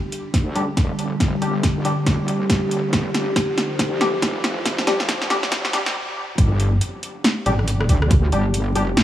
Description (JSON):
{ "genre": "deep dubstep", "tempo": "139 BPM", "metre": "4/4", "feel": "swing 60% on 16ths, half-time", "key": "unclear", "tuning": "A4 = 439 Hz", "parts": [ { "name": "overtone-sweeping drone", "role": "sustained chords", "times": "0.0-9.0 s", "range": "D3 to G4", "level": "-26 LUFS", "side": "equal", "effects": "chorus, built-in reverb" }, { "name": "riser", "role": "sound effects", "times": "1.2-6.0 s", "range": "none", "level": "-32 LUFS", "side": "right 1 dB", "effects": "none" }, { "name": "deep house drum kit", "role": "drums", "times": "0.1-9.0 s", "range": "hi-hat, rim click, snare drum", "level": "-23 LUFS", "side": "equal", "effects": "overdrive" }, { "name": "wobble bass", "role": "bass", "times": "0.3-9.0 s", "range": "F1 to D2", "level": "-23 LUFS", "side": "equal", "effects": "chorus, high-pass filter" }, { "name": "electronic kick drum", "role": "drums", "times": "0.3-8.2 s", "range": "none", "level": "-20 LUFS", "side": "equal", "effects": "overdrive" }, { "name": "percussive organ stab", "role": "stabs", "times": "0.6-8.8 s", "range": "G3 to G4", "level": "-26 LUFS", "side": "left 1 dB", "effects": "ensemble chorus, dub echo" } ], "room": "light reverb, digital ambience", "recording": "vinyl crackle, high-pass filter, small room ambience", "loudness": "-18 LUFS", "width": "side -12 dB against mid", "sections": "0.0-6.4 A section; 6.4-9.0 B section", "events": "build-up 0.0-6.4; drum fill 0.0-6.0; filter sweep 0.0-6.4; riser 1.2-6.0; break 6.0-6.4; drop 6.4-9.0", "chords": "0.0 G5" }